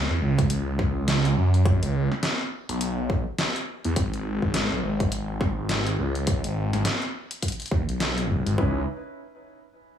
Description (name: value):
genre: glitch hop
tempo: 104 BPM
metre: 4/4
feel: swing 60% on 16ths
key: C# minor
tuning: A4 = 439 Hz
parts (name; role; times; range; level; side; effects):
- phased detuned saw bass; bass; 0.0-8.8 s; G#1 to F#2; -24 LUFS; equal; phaser, overdrive
- dubstep drum kit; drums; 0.4-8.6 s; hi-hat, snare drum; -28 LUFS; equal; none
- electronic kick drum; drums; 0.4-8.7 s; none; -26 LUFS; equal; none
- warm grand piano; stabs; 8.6-8.8 s; C#4 to B4; -34 LUFS; right 3 dB; vintage 12-bit sampler grit, sidechain pumping, tape echo
room: digital ambience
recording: small room ambience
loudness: -23 LUFS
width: side -9 dB against mid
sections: 0.0-8.6 A section; 8.6-10.0 B section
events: none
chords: 0.0 C#7(no3); 4.0 G#m; 8.6 C#m9